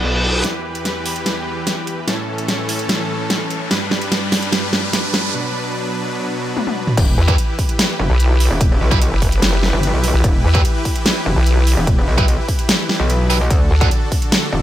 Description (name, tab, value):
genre	heavy wobble dubstep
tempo	147 BPM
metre	4/4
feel	half-time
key	E dorian, E minor from 7.0 s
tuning	A4 = 440 Hz
part	supersaw chords	sustained chords	0.0-14.6 s	E2 to F#5	-22 LUFS	equal	sidechain pumping
part	metallic wobble bass	bass	0.0-0.4, 7.0-14.6 s	E1 to D2	-18 LUFS	equal	chorus, overdrive
part	reverse cymbal and riser	sound effects	0.0-5.3 s	none	-24 LUFS	left 1 dB	none
part	dubstep drum kit	drums	0.4-14.4 s	crash cymbal, hi-hat, snare drum, toms	-20 LUFS	equal	studio reverb
part	electronic kick drum	drums	7.0-14.2 s	none	-17 LUFS	equal	studio reverb
part	vowel-sweep wobble bass	bass	7.2-13.9 s	F#1 to E2	-14 LUFS	equal	chorus, overdrive
part	distorted electric guitar	stabs	7.3-13.9 s	D4 to B4	-23 LUFS	right 2 dB	overdrive, digital delay
room	light reverb, digital ambience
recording	none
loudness	-15 LUFS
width	side -13 dB against mid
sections	0.4-7.0 A section; 7.0-14.6 B section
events	reverse cymbal 0.0-0.4; build-up 0.4-7.0; drum fill 0.4-5.3, 6.6-7.0; riser 0.4-5.3; break 5.3-7.0; drop 7.0-14.6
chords	0.4 Em; 2.1 A; 3.7 G; 5.3 Bm; 7.0 Em; 13.5 D